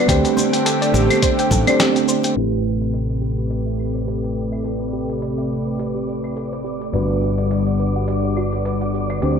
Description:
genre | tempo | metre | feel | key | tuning
sunset chillout | 105 BPM | 4/4 | swing 57% on 16ths | A dorian | A4 = 440 Hz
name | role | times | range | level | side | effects
mellow FM electric piano | accompaniment | 0.0-9.4 s | G3 to C5 | -24 LUFS | right 2 dB | chorus, phaser, auto-pan, digital delay
lush unison pad | sustained chords | 0.0-9.4 s | C3 to B4 | -23 LUFS | left 1 dB | chorus
soft round pluck | arpeggios | 0.0-9.4 s | F#4 to G5 | -26 LUFS | right 4 dB | chorus, digital delay
fretless electric bass | bass | 0.1-9.4 s | G1 to D2 | -23 LUFS | left 1 dB | tube saturation
dusty soul sampler-style drum kit | drums | 0.1-9.4 s | cabasa, claves, hi-hat, snare drum | -22 LUFS | left 3 dB | none
electronic kick drum | drums | 0.1-1.6 s | none | -22 LUFS | left 1 dB | none
congas | percussion | 0.4-2.3 s | none | -29 LUFS | right 5 dB | none
wind-like tuned noise texture | texture | 4.4-9.4 s | D5 to D6 | -31 LUFS | right 3 dB | built-in reverb
room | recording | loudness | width
moderate concert hall reverb, RT60 2.1 s | low-pass filter | -17 LUFS | side -7 dB against mid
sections
0.0-2.4 A section; 2.4-9.4 B section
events
filter sweep on analog synth pad 2.4-9.4; filter sweep 2.4-9.4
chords
0.1 D7sus4; 2.4 Am9; 6.9 Gmaj7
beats
| 0.08 0.66 1.23 1.80 | 2.37 2.94 3.51 4.08 | 4.66 5.23 5.80 6.37 | 6.94 7.51 8.08 8.65 | 9.23

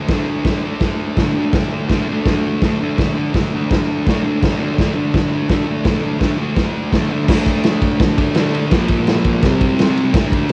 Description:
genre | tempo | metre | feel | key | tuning
garage rock duo or trio | 167 BPM | 4/4 | straight | D minor | A4 = 440 Hz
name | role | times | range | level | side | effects
thick fuzz guitar | riff | 0.0-10.5 s | Bb2 to D4 | -20 LUFS | equal | distortion
raw garage drum kit | drums | 0.1-10.5 s | crash cymbal, hi-hat, kick drum, ride cymbal, snare drum | -20 LUFS | equal | cassette tape
room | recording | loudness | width
light reverb | home recording on cassette | -17 LUFS | mono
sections
0.0-7.3 A section; 7.3-10.5 B section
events
none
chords
0.0 D5; 8.7 Bb5; 9.4 C5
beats
| 0.11 0.46 0.82 1.18 | 1.54 1.90 2.26 2.62 | 2.98 3.34 3.69 4.05 | 4.41 4.77 5.13 5.49 | 5.85 6.21 6.57 6.92 | 7.28 7.64 8.00 8.35 | 8.71 9.07 9.42 9.78 | 10.14 10.49

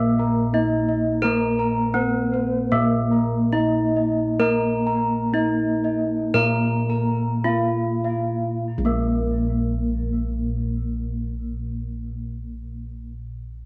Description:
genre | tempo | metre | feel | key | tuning
Javanese gamelan | 47-86 BPM | 4/4 | straight | unclear | A4 = 441 Hz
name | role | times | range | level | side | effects
gamelan-type bronze metallophone | melody | 0.0-13.1 s | Bb3 to Bb4 | -26 LUFS | equal | tape echo
gamelan-type bronze metallophone | accompaniment | 0.0-13.1 s | Bb3 | -29 LUFS | equal | none
gamelan-type bossed gongs | arpeggios | 0.0-13.1 s | Bb4 to Bb5 | -35 LUFS | equal | none
gamelan-type bronze metallophone | arpeggios | 0.0-13.1 s | Bb4 to Bb5 | -32 LUFS | equal | none
gamelan-type bossed gongs | bass | 0.0-13.0 s | Bb1 to Bb4 | -28 LUFS | equal | none
room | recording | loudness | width
wet spring reverb, RT60 1.5 s | none | -22 LUFS | mono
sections
0.0-8.7 A section; 8.7-13.7 B section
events
slowing down 1.2-8.7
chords
none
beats
0.54 | 1.24 1.96 2.72 3.53 | 4.40 5.34 6.35 7.45 | 8.66 9.93 11.20 12.46

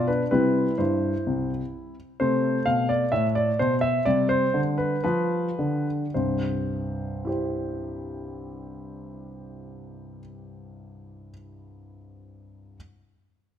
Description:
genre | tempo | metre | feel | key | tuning
classical-period piano sonatina | 104-131 BPM | 4/4 | rubato | C major | A4 = 441 Hz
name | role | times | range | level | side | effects
clear grand piano | solo | 0.0-12.8 s | C2 to F5 | -24 LUFS | equal | none
room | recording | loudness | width
moderate recital hall reverb, RT60 1.8 s | close, detailed microphones | -22 LUFS | side -9 dB against mid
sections
0.0-2.2 A section; 2.2-6.2 B section; 6.2-10.5 C section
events
slowing down 1.3-6.2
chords
0.3 C; 2.2 Amadd9; 4.1 G7/C; 6.2 C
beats
| 0.31 0.79 1.27 1.74 | 2.21 2.67 3.13 3.59 | 4.06 4.54 5.05 5.59 | 6.15 6.70 7.25 7.79 | 8.34 8.88 9.43 9.97

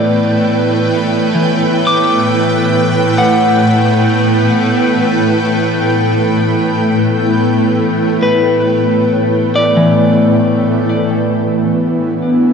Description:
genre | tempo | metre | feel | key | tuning
ambient | free time | none | none | unclear | A4 = 440 Hz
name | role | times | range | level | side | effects
shimmering ambient pad | sustained chords | 0.0-12.5 s | A2 to G5 | -12 LUFS | right 1 dB | chorus, built-in reverb
electric guitar at the edge of break-up | arpeggios | 0.0-11.6 s | E3 to D6 | -16 LUFS | left 2 dB | tape echo
bowed-like drone | drone | 0.0-10.7 s | E3 to B3 | -19 LUFS | left 1 dB | built-in reverb, phaser
wind-like tuned noise texture | texture | 0.0-10.7 s | G6 | -34 LUFS | right 2 dB | none
room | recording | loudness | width
wet cathedral reverb, RT60 5.8 s | in a vast, echoing space | -10 LUFS | side -6 dB against mid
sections
0.0-10.7 A section; 10.7-12.5 B section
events
none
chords
0.0 A5; 10.7 Em7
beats
free time

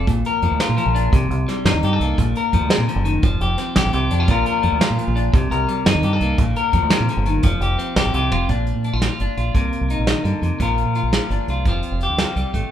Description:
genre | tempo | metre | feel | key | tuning
highlife guitar band | 114 BPM (dotted quarters) | 12/8 | straight | Bb major | A4 = 435 Hz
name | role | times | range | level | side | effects
clean electric guitar | accompaniment | 0.0-12.7 s | G2 to Bb4 | -21 LUFS | left 3 dB | none
deep dub fingered electric bass | bass | 0.0-12.6 s | F1 to Bb2 | -21 LUFS | right 1 dB | none
soft brush drum kit | drums | 0.1-12.6 s | hi-hat, kick drum, snare drum, toms | -20 LUFS | right 1 dB | none
room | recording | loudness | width
light reverb | band playing live in one room | -16 LUFS | side -10 dB against mid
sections
0.0-8.5 A section; 8.5-12.7 B section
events
drum fill 8.3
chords
0.1 Bb; 1.1 Cm7; 2.2 Bb; 3.2 Fsus2; 4.3 Bb; 5.3 Cm7; 6.4 Bb; 7.4 Fsus2; 8.5 Bb; 9.5 Cm7; 10.6 Bb; 11.7 Fadd9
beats
| 0.07 0.60 1.13 1.65 | 2.18 2.71 3.23 3.76 | 4.28 4.81 5.33 5.86 | 6.39 6.91 7.44 7.97 | 8.49 9.02 9.55 10.08 | 10.60 11.13 11.66 12.19

